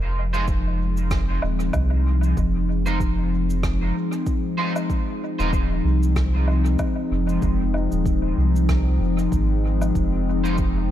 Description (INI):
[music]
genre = ambient dub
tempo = 95 BPM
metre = 4/4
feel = swing 57% on 16ths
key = F minor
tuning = A4 = 438 Hz
[part]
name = warbly tape-like pad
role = sustained chords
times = 0.0-10.9 s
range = F3 to Bb4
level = -25 LUFS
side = left 3 dB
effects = chorus, built-in reverb
[part]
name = soft dub sub bass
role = bass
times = 0.0-10.9 s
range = Eb1 to C2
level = -21 LUFS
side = equal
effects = none
[part]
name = electric guitar at the edge of break-up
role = stabs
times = 0.3-5.5, 10.4-10.6 s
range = Ab3 to C5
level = -32 LUFS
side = right 3 dB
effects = analog chorus, dub echo
[part]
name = cabasa, rim click and woodblock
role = drums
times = 0.3-10.7 s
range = none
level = -35 LUFS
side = right 1 dB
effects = dub echo
[part]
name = electronic kick drum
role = drums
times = 0.5-10.7 s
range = none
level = -25 LUFS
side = equal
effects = overdrive
[sound]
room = light reverb, small room ambience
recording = none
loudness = -19 LUFS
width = side -12 dB against mid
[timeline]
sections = 0.0-10.9 A section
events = none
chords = 0.0 Fm7